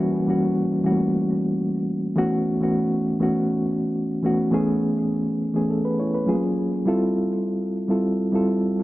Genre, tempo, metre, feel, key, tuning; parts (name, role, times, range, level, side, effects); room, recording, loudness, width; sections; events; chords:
soul; 102 BPM; 4/4; straight; A4 = 440 Hz
mellow reed electric piano; solo; 0.0-8.8 s; E3 to C#5; -20 LUFS; equal; fast tremolo, analog delay
light reverb; -20 LUFS; side -17 dB against mid
0.0-4.5 A section; 4.5-8.8 B section
0.0 F#7b9; 2.2 A69; 4.5 Amaj9; 6.3 F#maj9; 6.9 Fmaj9